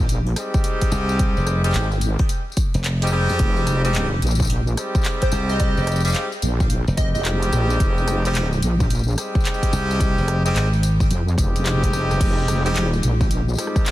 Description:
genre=glitch hop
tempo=109 BPM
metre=4/4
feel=swing 64% on 16ths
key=F minor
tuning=A4 = 440 Hz
part: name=wobble bass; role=bass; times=0.0-13.6 s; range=F1 to F2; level=-20 LUFS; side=equal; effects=chorus, tube saturation
part: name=pop drum kit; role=drums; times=0.1-13.9 s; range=crash cymbal, handclaps, hi-hat, rim click, tambourine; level=-29 LUFS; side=left 1 dB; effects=studio reverb
part: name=clear horn section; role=stabs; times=0.4-13.9 s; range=G3 to G4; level=-25 LUFS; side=equal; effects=sidechain pumping, digital delay
part: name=electronic kick drum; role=drums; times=0.5-13.8 s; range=none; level=-21 LUFS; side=equal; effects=studio reverb
part: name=slap bass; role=bass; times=0.9-11.1 s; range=F1 to F2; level=-20 LUFS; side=equal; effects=none
part: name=plucky unison lead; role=melody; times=5.2-7.2 s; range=C5 to F5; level=-30 LUFS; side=equal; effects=wide subtle chorus, digital delay
part: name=dark analog pad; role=sustained chords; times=12.5-13.9 s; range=Ab3 to F4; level=-31 LUFS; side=equal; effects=chorus, sidechain pumping
room=digital ambience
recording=dense, heavily limited modern master, vinyl crackle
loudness=-18 LUFS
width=side -15 dB against mid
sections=0.0-13.9 A section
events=none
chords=0.0 Fm7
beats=0.09 0.65 | 1.20 1.75 2.30 2.85 | 3.40 3.95 4.50 5.05 | 5.60 6.15 6.70 7.25 | 7.80 8.35 8.90 9.45 | 10.00 10.55 11.10 11.65 | 12.20 12.76 13.30 13.86

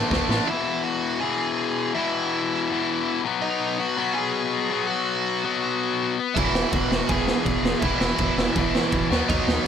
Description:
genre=punk rock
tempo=163 BPM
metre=4/4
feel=straight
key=E major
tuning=A4 = 440 Hz
part: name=distorted electric guitar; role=riff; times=0.0-0.5, 6.4-9.7 s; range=E2 to D4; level=-27 LUFS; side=right 21 dB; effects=overdrive
part: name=tight distorted guitar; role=riff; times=0.0-9.7 s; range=E2 to D4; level=-24 LUFS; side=left 9 dB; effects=distortion
part: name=organ-like FM bass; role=bass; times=0.0-0.4, 6.4-9.6 s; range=E1 to A2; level=-30 LUFS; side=right 1 dB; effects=none
part: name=raw garage drum kit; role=drums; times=0.1-0.4, 6.4-9.6 s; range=crash cymbal, kick drum, snare drum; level=-24 LUFS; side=right 1 dB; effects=none
part: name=dark smooth lead guitar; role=melody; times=0.5-9.7 s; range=D#4 to G#5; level=-28 LUFS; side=right 4 dB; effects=overdrive, tape echo
room=little or no reverb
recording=none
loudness=-21 LUFS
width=side -8 dB against mid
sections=0.5-9.7 A section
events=drum fill 0.0-0.5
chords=0.5 E; 3.2 B; 6.4 E; 9.1 B/D#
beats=0.11 | 0.48 0.85 1.22 1.59 | 1.96 2.33 2.70 3.06 | 3.43 3.80 4.17 4.54 | 4.90 5.27 5.64 6.01 | 6.37 6.74 7.11 7.48 | 7.84 8.21 8.58 8.94 | 9.31

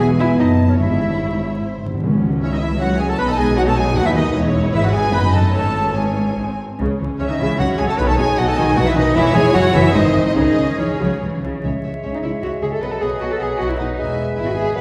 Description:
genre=quick classical-period movement for symphony orchestra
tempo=137-157 BPM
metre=3/4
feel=rubato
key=C# minor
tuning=A4 = 440 Hz
part: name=clear studio violin section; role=melody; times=0.0-14.8 s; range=B#4 to B5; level=-29 LUFS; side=equal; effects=none
part: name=bright clarinet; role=second line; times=0.0-14.8 s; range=C#4 to C#5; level=-27 LUFS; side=equal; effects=none
part: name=concert flute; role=second line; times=0.0-14.8 s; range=C#5 to B5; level=-28 LUFS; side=equal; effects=none
part: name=rich studio violin section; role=second line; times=0.0-14.8 s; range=G#4 to E5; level=-30 LUFS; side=equal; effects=none
part: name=warm chamber viola section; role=accompaniment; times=0.0-14.8 s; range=C#3 to E4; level=-27 LUFS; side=equal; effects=none
part: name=mellow French horn section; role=sustained chords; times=0.0-14.8 s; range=C#3 to B4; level=-25 LUFS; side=equal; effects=none
part: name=rich studio double bass section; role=bass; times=0.0-14.8 s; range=E1 to D#2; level=-26 LUFS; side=equal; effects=none
part: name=warm studio cello section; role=bass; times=0.0-14.8 s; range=C#2 to B4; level=-25 LUFS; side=equal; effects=none
part: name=timpani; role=percussion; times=0.8-2.6, 11.6-12.2 s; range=G#2 to C#3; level=-26 LUFS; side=equal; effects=none
part: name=mellow bassoon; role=accompaniment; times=11.6-14.8 s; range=F#3 to G#3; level=-30 LUFS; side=equal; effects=none
room=wet scoring stage reverb, RT60 2.0 s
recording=heard from further back in the room, vinyl crackle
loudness=-18 LUFS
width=mono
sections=0.0-2.0 A section; 2.0-11.6 A section; 11.6-14.8 A section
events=timpani fill 1.6-2.0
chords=0.4 F#m; 0.8 C#m/G#; 1.6 G#; 2.0 C#m; 3.2 B; 4.4 E; 5.1 F#m; 5.6 C#m/G#; 6.4 G#; 6.8 C#m; 8.0 B; 9.2 E; 9.5 F#5; 9.9 G#; 10.4 C#m; 12.8 B; 14.0 E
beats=0.00 0.39 | 0.80 1.21 1.61 | 2.03 2.43 2.81 | 3.20 3.59 3.97 | 4.36 4.75 5.14 | 5.55 5.96 6.38 | 6.80 7.20 7.60 | 7.99 8.38 8.77 | 9.16 9.54 9.94 | 10.36 10.80 11.22 | 11.64 12.04 12.43 | 12.82 13.21 13.60 | 13.98 14.37 14.76

